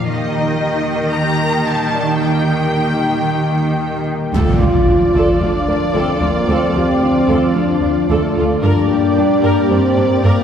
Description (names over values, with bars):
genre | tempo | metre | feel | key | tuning
cinematic | 112 BPM | 4/4 | straight | D phrygian | A4 = 439 Hz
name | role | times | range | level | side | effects
rich symphonic violin section | melody | 0.0-4.0 s | Eb5 to Bb5 | -21 LUFS | left 2 dB | none
analog string pad | sustained chords | 0.0-10.4 s | Eb3 to G5 | -20 LUFS | equal | ensemble chorus
clear baby grand piano | texture | 0.0-10.4 s | D4 to Bb5 | -30 LUFS | equal | none
rich symphonic cello section | bass | 0.1-10.3 s | D2 to Eb3 | -19 LUFS | right 1 dB | none
warm symphonic viola section | accompaniment | 4.3-10.4 s | D4 to D5 | -22 LUFS | right 1 dB | none
impact | sound effects | 4.3-6.5 s | none | -19 LUFS | equal | none
mellow French horn section | sustained chords | 4.4-10.4 s | A3 to F4 | -16 LUFS | left 1 dB | none
room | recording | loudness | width
wet concert hall reverb, RT60 2.2 s | heard from further back in the room | -13 LUFS | side -8 dB against mid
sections
0.0-4.3 A section; 4.3-10.4 B section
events
impact 4.3-6.5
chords
0.1 Eb; 4.3 Dm; 8.6 Gm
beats
| 0.06 0.59 1.13 1.67 | 2.20 2.74 3.27 3.81 | 4.34 4.88 5.42 5.95 | 6.49 7.02 7.56 8.10 | 8.63 9.17 9.70 10.24